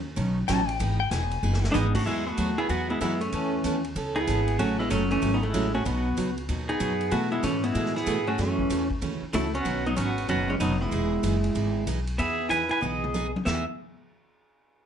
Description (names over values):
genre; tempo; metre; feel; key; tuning
country, western swing; 190 BPM; 4/4; swing 64% on 8ths; E major; A4 = 440 Hz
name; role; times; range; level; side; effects
upright bass; bass; 0.0-13.6 s; E1 to B2; -29 LUFS; equal; none
picked steel-string acoustic guitar; accompaniment; 0.2-13.6 s; B2 to A4; -32 LUFS; right 3 dB; none
vintage drum kit; drums; 0.2-13.6 s; china cymbal, crash cymbal, hi-hat, kick drum, ride cymbal, snare drum, toms; -38 LUFS; equal; none
pedal steel guitar; second line; 0.5-1.7 s; G5 to A5; -30 LUFS; left 8 dB; none
pedal steel guitar; melody; 1.7-13.6 s; E3 to G#5; -27 LUFS; right 1 dB; none
archtop guitar, miked and amplified; second line; 1.7-13.6 s; G#3 to E4; -32 LUFS; left 1 dB; none
room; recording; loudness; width
moderate club reverb, RT60 0.8 s; nothing above 10.9 kHz; -24 LUFS; side -8 dB against mid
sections
0.0-2.1 A section; 2.1-12.2 B section; 12.2-13.5 C section; 13.5-14.7 D section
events
pedal steel guitar solo 0.0-2.1; drum fill 1.4-1.7, 12.8-13.5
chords
0.0 Badd9; 0.8 Emaj7; 2.1 Eadd9; 3.3 Aadd9; 4.6 F#m; 5.9 B; 7.1 B7sus4; 8.4 F#m7; 9.7 Badd9; 10.9 Emaj7